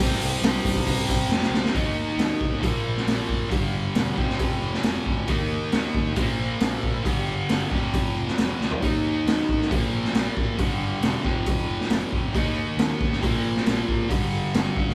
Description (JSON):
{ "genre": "quiet-loud alternative rock", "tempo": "136 BPM", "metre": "4/4", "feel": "straight", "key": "unclear", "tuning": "A4 = 436 Hz", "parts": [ { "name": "fuzz guitar", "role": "riff", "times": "0.0-14.9 s", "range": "F2 to Eb4", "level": "-28 LUFS", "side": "equal", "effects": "distortion" }, { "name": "fuzz picked electric bass", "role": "bass", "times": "0.0-14.9 s", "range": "E1 to G2", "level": "-35 LUFS", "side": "equal", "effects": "overdrive" }, { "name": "raw garage drum kit", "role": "drums", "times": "0.1-14.9 s", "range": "hi-hat, kick drum, snare drum, toms", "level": "-27 LUFS", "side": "equal", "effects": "none" } ], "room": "light reverb", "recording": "band playing live in one room", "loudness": "-24 LUFS", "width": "mono", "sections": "0.0-1.7 A section; 1.7-14.9 B section", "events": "drum fill 1.3-1.7, 8.6", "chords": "0.0 C5; 1.7 Eb5; 2.6 Bb5; 3.5 G5; 4.2 F5; 5.3 Eb5; 6.2 Bb5; 7.0 G5; 7.7 F5; 8.8 Eb5; 9.7 Bb5; 10.6 G5; 11.2 F5; 12.3 Eb5; 13.2 Bb5; 14.1 G5", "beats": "0.42 0.86 1.30 | 1.74 2.19 2.63 3.07 | 3.51 3.95 4.40 4.84 | 5.28 5.72 6.17 6.61 | 7.05 7.49 7.93 8.37 | 8.82 9.26 9.70 10.14 | 10.58 11.02 11.46 11.90 | 12.34 12.78 13.22 13.66 | 14.10 14.54" }